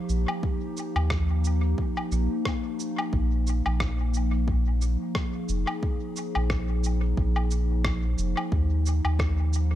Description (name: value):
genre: ambient dub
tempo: 89 BPM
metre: 4/4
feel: swing 56% on 16ths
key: unclear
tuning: A4 = 442 Hz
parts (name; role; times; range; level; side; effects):
- warbly tape-like pad; sustained chords; 0.0-9.8 s; F3 to Ab4; -31 LUFS; left 1 dB; chorus, built-in reverb
- soft dub sub bass; bass; 0.1-9.8 s; F1 to Eb2; -24 LUFS; equal; none
- electronic cabasa, woodblock and rim click; drums; 0.1-9.7 s; none; -33 LUFS; left 1 dB; studio reverb, dub echo
- electronic kick drum; drums; 0.4-9.3 s; none; -29 LUFS; equal; overdrive, studio reverb
room: little or no reverb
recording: none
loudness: -24 LUFS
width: side -13 dB against mid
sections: 0.0-9.8 A section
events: none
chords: 0.0 Ebadd9; 3.1 Bb7sus4; 8.5 Ebsus2